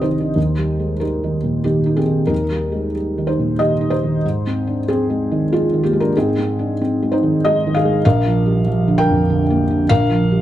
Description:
neoclassical minimalist piano; 94 BPM; 3/4; rubato; Eb major; A4 = 440 Hz
felt-muted upright piano; solo; 0.0-10.4 s; Bb1 to G5; -15 LUFS; equal
light reverb; close, detailed microphones; -15 LUFS; side -12 dB against mid
0.4-10.4 A section
0.4 Eb; 4.2 Ab; 8.0 Bb

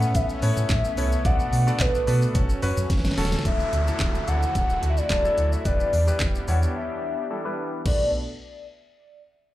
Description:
dance-pop; 109 BPM; 4/4; straight; B minor; A4 = 440 Hz
hollow clarinet-like synth lead; melody; 0.0-8.1 s; B4 to F#5; -27 LUFS; left 1 dB; chorus, low-pass filter, ping-pong delay, slapback echo
bright concert grand piano; accompaniment; 0.0-8.1 s; F#3 to E5; -32 LUFS; left 1 dB; sidechain pumping, low-pass filter, slapback echo
soft supersaw; sustained chords; 0.0-8.1 s; B2 to A4; -34 LUFS; equal; sidechain pumping, low-pass filter
sub bass with octave; bass; 0.0-8.1 s; D1 to B2; -24 LUFS; equal; sidechain pumping
pop drum kit; drums; 0.0-8.0 s; crash cymbal, handclaps, hi-hat, kick drum, shaker, snare drum; -26 LUFS; equal
downlifter; sound effects; 3.5-7.9 s; -37 LUFS; equal; slapback echo
digital ambience; live gig heard through the venue's PA, club reverb; -21 LUFS; side -15 dB against mid
0.0-3.5 A section; 3.5-7.9 B section; 7.9-9.5 C section
drum fill 2.9-3.5; filter sweep 3.5-7.9; break 6.8-7.9
0.0 Aadd9; 1.3 Bm7; 2.4 F#m; 3.5 Dadd9; 5.7 Em7; 7.9 Bm7

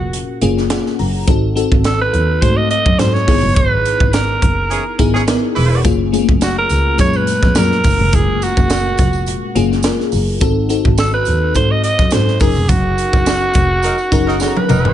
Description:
polished 1980s jazz-funk pop; 105 BPM; 4/4; swing 54% on 16ths; A4 = 440 Hz
growling alto saxophone; melody; 0.0-14.9 s; F#4 to D#5; -18 LUFS; right 2 dB; digital delay
bell-like FM electric piano; accompaniment; 0.0-14.9 s; A#2 to A#5; -19 LUFS; left 4 dB; analog chorus
warm double bass; bass; 0.0-14.9 s; E1 to G#2; -17 LUFS; equal
crisp fusion drum kit; drums; 0.1-14.9 s; hi-hat, kick drum, snare drum, toms; -17 LUFS; equal; gated reverb
warm horn section; second line; 4.7-5.8, 13.8-14.9 s; E3 to B4; -22 LUFS; right 3 dB
tambourine; percussion; 5.8-14.8 s; -32 LUFS; right 9 dB
small room ambience; nothing above 10.6 kHz; -12 LUFS; side -11 dB against mid
0.0-14.9 A section
FM electric piano fill 0.4-1.3; band accent 3.6-5.8, 12.7-14.9; drum fill 14.4-14.9
0.0 F#maj7; 1.3 G#7b9; 3.3 C#m7 (rootless); 5.8 F#maj7; 10.4 G#7b9; 12.4 F#6

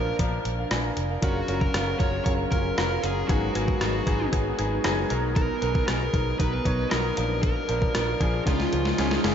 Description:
1980s-style pop; 116 BPM; 4/4; straight; F# major; A4 = 441 Hz
dark smooth lead guitar; melody; 0.0-9.2 s; E#4 to C#5; -31 LUFS; equal; overdrive, ping-pong delay
bright concert grand piano; accompaniment; 0.0-9.3 s; E#3 to A#5; -29 LUFS; equal
chorused pulse-width pad; sustained chords; 0.0-9.3 s; C#3 to E#5; -33 LUFS; equal
vintage muted fingered electric bass; bass; 0.0-9.3 s; E#1 to C#2; -30 LUFS; equal
gated 80s digital drum machine; drums; 0.2-9.3 s; hi-hat, kick drum, rim click, snare drum; -27 LUFS; equal; gated reverb, gated reverb snare, overdrive
wet cathedral reverb, RT60 6.9 s; dreamy mix soaked in reverb, nothing above 7.6 kHz; -22 LUFS; side -8 dB against mid
0.0-9.3 A section
drum fill 8.5-9.3
0.0 A#; 1.2 F#maj7; 3.3 G#m7; 5.1 Bmaj7; 7.2 A#; 8.5 C#add9

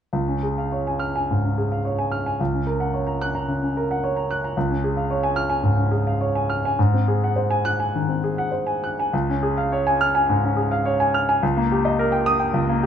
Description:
classical, romantic character piece for solo piano; 94-113 BPM; 4/4; rubato; Db major; A4 = 439 Hz
clear concert grand piano; solo; 0.1-12.9 s; Db2 to Gb6; -19 LUFS; equal
light reverb; nothing above 10.4 kHz; -20 LUFS; side -8 dB against mid
0.1-9.1 A section; 9.1-12.9 B section
0.1 Db; 2.4 Gb/Db; 4.6 Db; 6.8 Ab7; 9.1 Db; 11.4 Eb7/Db

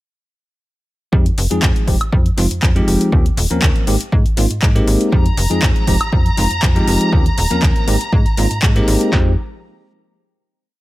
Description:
filtered disco house; 120 BPM; 4/4; straight; F minor; A4 = 440 Hz
bell-like tine electric piano; accompaniment; 1.1-9.3 s; F3 to Bb4; -19 LUFS; equal; phaser, sidechain pumping, low-pass filter
slap-like FM bass; bass; 1.1-9.4 s; Eb1 to Ab2; -18 LUFS; equal; sidechain pumping, low-pass filter
punchy analog drum machine; drums; 1.1-9.2 s; handclaps, kick drum, snare drum; -16 LUFS; equal
house drum kit; drums; 1.3-9.1 s; handclaps, hi-hat, woodblock; -22 LUFS; left 1 dB; overdrive, sidechain pumping on hats, sidechain pumping on perc
warm symphonic violin section; sustained chords; 5.1-9.1 s; Bb5; -23 LUFS; left 1 dB; sidechain pumping, low-pass filter
digital ambience; -13 LUFS; side -17 dB against mid
1.1-9.1 groove; 9.1-10.8 final chord
filter sweep 1.1-9.1
1.1 Fm7; 3.1 Eb13; 3.9 Abmaj9; 5.1 Fm7; 7.1 Eb13; 7.9 Abmaj9; 9.1 Fm7

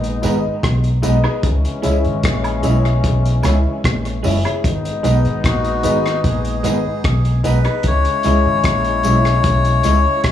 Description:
roots reggae; 75 BPM; 4/4; straight; A4 = 440 Hz
brilliant trombone section; second line; 0.0-10.3 s; E3 to E4; -24 LUFS; left 4 dB; tape echo
vintage muted fingered electric bass; bass; 0.0-10.3 s; F#1 to C#2; -17 LUFS; equal
cloth-damped thuddy drum kit; drums; 0.0-10.3 s; hi-hat, kick drum, rim click; -22 LUFS; equal; tape echo
electric guitar through a small old amp; accompaniment; 0.2-10.0 s; G#3 to E4; -24 LUFS; right 6 dB; tape echo
dark concert grand piano; stabs; 0.2-10.1 s; D#4 to E5; -25 LUFS; left 4 dB
tambourine and woodblock; percussion; 0.2-10.0 s; -31 LUFS; right 2 dB
melodica; melody; 5.5-10.2 s; F#4 to C#5; -19 LUFS; left 6 dB; tape echo
studio reverb; echo-heavy mix, small room ambience; -14 LUFS; side -10 dB against mid
0.0-10.3 A section
0.0 G#m; 1.4 C#m; 4.6 G#m; 7.8 C#m

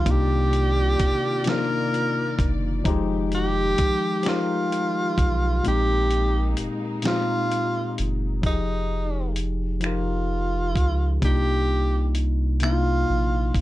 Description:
slow six-eight R&B; 43 BPM (dotted quarters); 6/8; straight; F dorian; A4 = 441 Hz
breathy tenor saxophone; melody; 0.0-13.6 s; Eb4 to Bb4; -25 LUFS; right 1 dB; slapback echo
tine electric piano; accompaniment; 0.0-13.6 s; Bb2 to Bb4; -27 LUFS; left 4 dB
warm studio string section; sustained chords; 0.0-8.4 s; C3 to D5; -35 LUFS; right 1 dB
round analog bass; bass; 0.0-13.6 s; F1 to Db2; -24 LUFS; equal
dusty soul sampler-style drum kit; drums; 0.1-13.6 s; finger snaps, hi-hat, kick drum, snare drum; -25 LUFS; equal
light reverb; dark, warm production; -21 LUFS; side -16 dB against mid
0.0-8.4 A section; 8.4-13.6 B section
kick muted 5.6-8.4
0.1 Cm11; 2.9 Fm9; 5.6 Bb13sus4; 8.4 Fm9; 11.2 Cm11

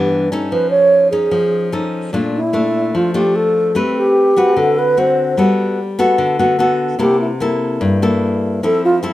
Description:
bossa nova; 148 BPM; 4/4; straight; A4 = 441 Hz
mellow wooden-headed alto flute; melody; 0.0-9.0 s; E4 to C#5; -14 LUFS; right 1 dB; plate reverb
nylon-string guitar; accompaniment; 0.0-9.1 s; G2 to B4; -16 LUFS; left 2 dB
moderate large studio reverb, RT60 1.1 s; -13 LUFS; side -15 dB against mid
0.0-9.1 A section
alto flute solo 0.0-9.1
0.0 Cmaj9 (rootless); 0.5 F7alt; 2.1 Bbmaj7; 3.8 Am9; 4.6 D6; 5.4 Gmaj9; 7.0 C6; 8.6 Fmaj7

